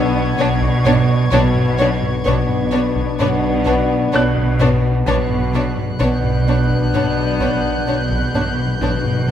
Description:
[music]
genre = cinematic, suspense film score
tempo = 64 BPM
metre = 4/4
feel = straight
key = B minor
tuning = A4 = 441 Hz
[part]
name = mellow French horn section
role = sustained chords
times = 0.0-9.3 s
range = B3 to D4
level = -23 LUFS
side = left 3 dB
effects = none
[part]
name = concert harp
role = riff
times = 0.0-9.3 s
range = B2 to B3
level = -23 LUFS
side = left 6 dB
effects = none
[part]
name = dark symphonic double bass section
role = bass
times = 0.0-9.3 s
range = B1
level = -23 LUFS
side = right 3 dB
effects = none
[part]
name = warm studio cello section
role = bass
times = 0.0-9.3 s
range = B2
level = -21 LUFS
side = right 2 dB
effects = none
[part]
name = dark grand piano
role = texture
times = 0.0-9.3 s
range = E6 to F#6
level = -28 LUFS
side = equal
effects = none
[part]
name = warm symphonic violin section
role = texture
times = 0.0-9.3 s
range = C#6 to G#6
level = -28 LUFS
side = left 1 dB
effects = none
[part]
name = warm studio violin section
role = melody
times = 0.4-8.9 s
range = C#5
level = -25 LUFS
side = left 1 dB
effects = none
[part]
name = warm symphonic violin section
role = second line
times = 0.4-9.3 s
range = D4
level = -26 LUFS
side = left 1 dB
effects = none
[part]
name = dark symphonic viola section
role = accompaniment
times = 0.4-9.3 s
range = B3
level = -26 LUFS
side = right 2 dB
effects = none
[part]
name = solo taiko drums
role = drums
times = 0.6-9.3 s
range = none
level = -25 LUFS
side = equal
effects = none
[part]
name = timpani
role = percussion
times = 5.1-9.3 s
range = B2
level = -26 LUFS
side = left 1 dB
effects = none
[sound]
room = moderate concert hall reverb, RT60 2.2 s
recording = none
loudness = -14 LUFS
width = side -10 dB against mid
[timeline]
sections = 0.0-9.3 A section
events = timpani fill 5.1-9.3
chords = 0.0 Bmadd9

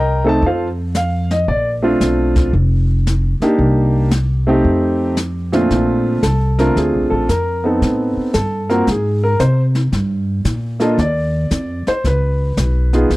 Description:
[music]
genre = jazz piano trio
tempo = 114 BPM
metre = 4/4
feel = swing 67% on 8ths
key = Bb major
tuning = A4 = 440 Hz
[part]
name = warm concert grand piano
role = melody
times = 0.0-13.2 s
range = Bb2 to Bb5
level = -16 LUFS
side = equal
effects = none
[part]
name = upright bass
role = bass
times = 0.0-13.2 s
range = F1 to C3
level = -17 LUFS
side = equal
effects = none
[part]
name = jazz brush drum kit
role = drums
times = 0.4-13.2 s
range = brushed snare drum, hi-hat, kick drum, snare drum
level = -20 LUFS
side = equal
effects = none
[sound]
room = small room ambience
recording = dry, close 1970s-style studio recording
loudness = -14 LUFS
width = side -19 dB against mid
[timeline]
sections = 0.0-5.7 A section; 5.7-13.2 B section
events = grand piano solo 5.7-13.2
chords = 0.4 N.C.; 1.5 Bbmaj9; 3.6 Cm7; 4.7 F7; 5.7 Bbmaj7; 7.8 Am7b5; 8.9 Ab; 9.9 Gm7; 12.0 Db7(no3)

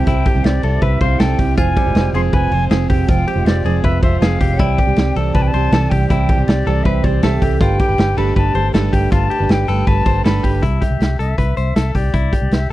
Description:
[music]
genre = jangly indie pop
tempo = 159 BPM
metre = 4/4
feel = straight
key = C major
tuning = A4 = 440 Hz
[part]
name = silver concert flute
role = melody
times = 0.0-12.7 s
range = D5 to C6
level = -23 LUFS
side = left 2 dB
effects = none
[part]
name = vibraphone with hard mallets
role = second line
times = 0.0-10.4 s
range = G4 to D5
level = -28 LUFS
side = moving between right 1 dB and right 13 dB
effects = auto-pan
[part]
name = picked plugged-in steel-string acoustic guitar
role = accompaniment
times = 0.0-11.1 s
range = C3 to B4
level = -22 LUFS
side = right 6 dB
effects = none
[part]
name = direct-recorded clean electric guitar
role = arpeggios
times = 0.0-12.7 s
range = G3 to C5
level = -24 LUFS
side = left 6 dB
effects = none
[part]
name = vintage muted fingered electric bass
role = bass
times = 0.0-12.7 s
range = F1 to C2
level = -18 LUFS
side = equal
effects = none
[part]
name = raw garage drum kit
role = drums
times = 0.1-12.6 s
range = hi-hat, kick drum, ride cymbal, snare drum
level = -17 LUFS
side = equal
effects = none
[sound]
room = little or no reverb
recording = dry, close 1970s-style studio recording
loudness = -13 LUFS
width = side -16 dB against mid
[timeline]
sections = 0.0-10.6 A section; 10.6-12.7 B section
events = none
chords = 0.0 C; 1.6 Fm; 4.6 C; 7.6 Gadd9; 10.6 C

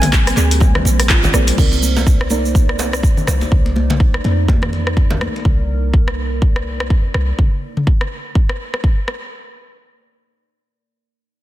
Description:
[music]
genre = afro house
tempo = 124 BPM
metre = 4/4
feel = swing 58% on 16ths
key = C minor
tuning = A4 = 436 Hz
[part]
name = expressive synth lead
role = melody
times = 0.0-0.8 s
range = Ab5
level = -27 LUFS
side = right 1 dB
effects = ensemble chorus, dub echo
[part]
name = dark analog pad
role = sustained chords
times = 0.0-7.4 s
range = Bb3 to D5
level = -28 LUFS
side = right 2 dB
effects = chorus, phaser, sidechain pumping
[part]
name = marimba with medium mallets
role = arpeggios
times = 0.0-1.6 s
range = G3 to C5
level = -27 LUFS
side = equal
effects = sidechain pumping, dub echo
[part]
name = deep mellow chord stab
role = stabs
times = 0.0-3.5 s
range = C4 to D5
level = -25 LUFS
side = right 6 dB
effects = chorus, vintage 12-bit sampler grit, sidechain pumping, dub echo
[part]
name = warm 808-style bass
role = bass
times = 0.0-7.3 s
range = Bb1 to F2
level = -19 LUFS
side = equal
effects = sidechain pumping
[part]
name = afro-pop drum kit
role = drums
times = 0.0-9.2 s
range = crash cymbal, handclaps, hi-hat, rim click, toms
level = -22 LUFS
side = left 1 dB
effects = none
[part]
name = congas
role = percussion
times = 0.0-5.4 s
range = none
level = -24 LUFS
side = left 2 dB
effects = none
[part]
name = djembe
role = percussion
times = 0.0-5.2 s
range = none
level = -27 LUFS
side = right 2 dB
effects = none
[part]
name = tube shaker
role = percussion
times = 0.0-3.5 s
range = none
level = -27 LUFS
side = right 5 dB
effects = none
[part]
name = electronic kick drum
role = drums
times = 0.1-9.0 s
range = none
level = -14 LUFS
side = equal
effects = none
[sound]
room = small room ambience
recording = dense, heavily limited modern master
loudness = -13 LUFS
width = side -14 dB against mid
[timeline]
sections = 0.0-1.6 A section; 1.6-9.3 B section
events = drop 0.0-1.6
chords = 0.0 Bb9; 1.6 Cm9

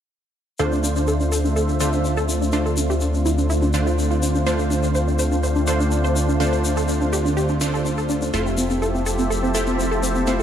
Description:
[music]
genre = progressive house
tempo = 124 BPM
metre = 4/4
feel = straight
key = D minor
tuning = A4 = 440 Hz
[part]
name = filtered supersaw swell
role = sustained chords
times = 0.6-10.4 s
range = D3 to E5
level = -26 LUFS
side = equal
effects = none
[part]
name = wide unison pluck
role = arpeggios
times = 0.6-10.4 s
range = C4 to C5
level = -24 LUFS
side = equal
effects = tape echo
[part]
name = supersaw stab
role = stabs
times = 0.6-10.4 s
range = D3 to C5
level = -24 LUFS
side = right 2 dB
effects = tape echo
[part]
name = fat analog bass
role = bass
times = 0.6-10.4 s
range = F1 to D2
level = -23 LUFS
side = left 1 dB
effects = none
[part]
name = tube shaker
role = percussion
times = 0.6-10.4 s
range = none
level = -31 LUFS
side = left 5 dB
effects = none
[sound]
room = light reverb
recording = none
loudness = -18 LUFS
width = side -9 dB against mid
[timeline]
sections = 0.6-10.4 A section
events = none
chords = 0.6 Dm7; 8.3 Fmaj7

